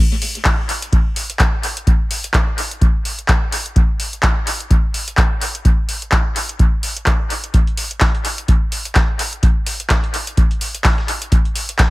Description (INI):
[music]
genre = house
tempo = 127 BPM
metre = 4/4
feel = swing 57% on 16ths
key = none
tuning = none
[part]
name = booming analog drum machine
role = drums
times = 0.2-11.9 s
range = handclaps, hi-hat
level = -20 LUFS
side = equal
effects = dub echo
[part]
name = electronic kick drum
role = drums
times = 0.5-11.9 s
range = none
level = -15 LUFS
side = equal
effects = none
[part]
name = dusty soul sampler-style drum kit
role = drums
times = 7.5-11.9 s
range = hi-hat, snare drum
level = -30 LUFS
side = right 1 dB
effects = sidechain pumping on hats, high-pass filter on hats, high-pass filter on snare
[sound]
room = little or no reverb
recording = echo-heavy mix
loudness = -15 LUFS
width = side -20 dB against mid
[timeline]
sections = 0.0-11.9 A section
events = none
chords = none